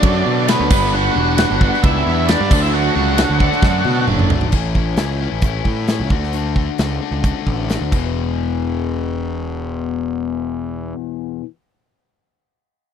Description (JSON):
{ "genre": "classic rock", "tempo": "132 BPM", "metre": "4/4", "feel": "straight", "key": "unclear", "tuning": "A4 = 440 Hz", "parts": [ { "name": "octave-fuzz lead guitar", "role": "melody", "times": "0.0-4.0 s", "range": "B4 to F#5", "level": "-21 LUFS", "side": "left 2 dB", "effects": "distortion" }, { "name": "octave-fuzz lead guitar", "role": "second line", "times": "0.0-4.0 s", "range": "B3 to F#4", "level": "-25 LUFS", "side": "right 5 dB", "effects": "distortion" }, { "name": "bright tonewheel organ", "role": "sustained chords", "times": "0.0-4.5 s", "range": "G3 to D5", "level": "-29 LUFS", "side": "equal", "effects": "none" }, { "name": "cranked stack guitar", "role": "riff", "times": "0.0-4.3 s", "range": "D3 to B4", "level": "-22 LUFS", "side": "right 16 dB", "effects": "overdrive" }, { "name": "crunchy overdriven guitar", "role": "riff", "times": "0.0-11.4 s", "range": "E2 to F#4", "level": "-23 LUFS", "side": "left 15 dB", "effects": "none" }, { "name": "fuzz picked electric bass", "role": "bass", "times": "0.0-10.9 s", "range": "E1 to B2", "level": "-20 LUFS", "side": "right 1 dB", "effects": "overdrive" }, { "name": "big rock drum kit", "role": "drums", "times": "0.0-8.0 s", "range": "crash cymbal, hi-hat, kick drum, ride cymbal, snare drum, toms", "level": "-18 LUFS", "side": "right 1 dB", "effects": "none" } ], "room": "little or no reverb", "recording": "dry, close 1970s-style studio recording", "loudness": "-15 LUFS", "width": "side -8 dB against mid", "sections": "0.0-4.5 A section; 4.5-8.2 B section; 8.2-11.8 C section", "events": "drum fill 3.6-4.5", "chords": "0.0 D; 0.7 G; 2.5 D; 4.5 A; 6.1 D; 7.9 E5", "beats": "0.04 0.48 | 0.93 1.38 1.83 2.28 | 2.72 3.17 3.62 4.07 | 4.52 4.97 5.42 5.88 | 6.33 6.79 7.24 7.70 | 8.15 8.61 9.06 9.52 | 9.97 10.43 10.89 11.34" }